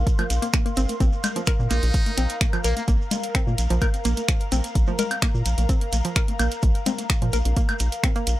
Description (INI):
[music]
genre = minimal techno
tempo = 128 BPM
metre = 4/4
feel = straight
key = unclear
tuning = A4 = 441 Hz
[part]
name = rubbery square bass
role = bass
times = 0.0-8.4 s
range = Ab1 to Bb2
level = -22 LUFS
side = equal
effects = sidechain pumping
[part]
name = airy breathy pad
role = texture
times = 0.0-8.4 s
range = Bb4 to C6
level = -32 LUFS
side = left 1 dB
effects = chorus, sidechain pumping
[part]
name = electronic kick drum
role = drums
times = 0.1-8.1 s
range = none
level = -22 LUFS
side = equal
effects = none
[part]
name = techno drum kit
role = drums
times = 0.1-8.4 s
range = finger snaps, hi-hat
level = -27 LUFS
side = right 1 dB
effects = overdrive
[part]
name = shekere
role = percussion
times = 0.1-8.4 s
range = none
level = -37 LUFS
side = right 3 dB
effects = none
[part]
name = hollow square pluck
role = riff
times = 0.2-8.2 s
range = F3 to Bb4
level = -30 LUFS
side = equal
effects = chorus, sidechain pumping, tape echo
[part]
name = congas and woodblock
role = percussion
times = 0.2-8.1 s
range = none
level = -30 LUFS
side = left 3 dB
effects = overdrive
[part]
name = trumpet with metal mute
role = melody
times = 1.7-2.8 s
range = Bb3 to Eb4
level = -32 LUFS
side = right 1 dB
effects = tape echo
[sound]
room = little or no reverb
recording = dry, gritty hardware recording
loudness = -20 LUFS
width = side -15 dB against mid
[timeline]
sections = 0.0-8.4 A section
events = none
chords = 0.0 Bb5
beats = 0.07 0.54 | 1.00 1.47 1.94 2.41 | 2.88 3.35 3.82 4.29 | 4.75 5.22 5.69 6.16 | 6.63 7.10 7.57 8.04